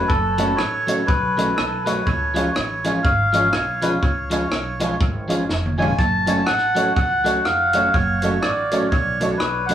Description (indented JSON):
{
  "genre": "ska",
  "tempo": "122 BPM",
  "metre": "4/4",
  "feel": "swing 59% on 8ths",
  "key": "F# harmonic minor",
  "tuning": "A4 = 440 Hz",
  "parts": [
    { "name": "melodica", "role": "melody", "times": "0.0-9.7 s", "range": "A4 to A5", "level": "-20 LUFS", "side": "equal", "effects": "dub echo" },
    { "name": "electric guitar at the edge of break-up", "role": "accompaniment", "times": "0.0-9.7 s", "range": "E#3 to F#4", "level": "-25 LUFS", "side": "right 1 dB", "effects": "dub echo" },
    { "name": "upright bass", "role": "bass", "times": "0.0-9.7 s", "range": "E#1 to C#2", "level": "-27 LUFS", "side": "right 1 dB", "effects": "none" },
    { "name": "compact cocktail drum kit", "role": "drums", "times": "0.1-9.7 s", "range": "hi-hat, kick drum, rim click, snare drum, toms", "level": "-24 LUFS", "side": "equal", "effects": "dub echo" },
    { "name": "dark upright piano", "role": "stabs", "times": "0.4-9.7 s", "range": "C#4 to C#5", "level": "-27 LUFS", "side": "left 1 dB", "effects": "none" }
  ],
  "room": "wet studio reverb, RT60 0.6 s",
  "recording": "band playing live in one room, small room ambience",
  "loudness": "-17 LUFS",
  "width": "side -10 dB against mid",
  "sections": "0.0-9.7 A section",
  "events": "drum fill 5.5-6.0",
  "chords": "0.0 F#m; 2.1 C#; 6.0 F#m",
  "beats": "| 0.10 0.59 1.08 1.57 | 2.06 2.55 3.05 3.54 | 4.03 4.52 5.01 5.50 | 5.99 6.48 6.97 7.46 | 7.95 8.44 8.93 9.42"
}